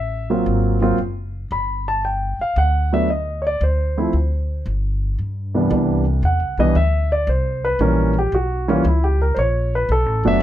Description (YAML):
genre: jazz piano trio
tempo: 114 BPM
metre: 4/4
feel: swing 69% on 8ths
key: unclear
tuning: A4 = 440 Hz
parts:
  - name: warm grand piano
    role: melody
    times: 0.0-10.4 s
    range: C2 to B5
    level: -19 LUFS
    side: right 1 dB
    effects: none
  - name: upright bass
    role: bass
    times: 0.0-10.4 s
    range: Gb1 to G2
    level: -20 LUFS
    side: equal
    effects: none
room: little or no reverb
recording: close, detailed microphones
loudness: -17 LUFS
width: side -12 dB against mid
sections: 0.0-5.7 A section; 5.7-10.4 B section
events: none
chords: 0.5 Ab13; 1.5 Gmaj7; 3.6 D7(no3); 4.7 N.C.; 5.7 Cmaj9; 7.8 A#dim7; 9.9 Bm7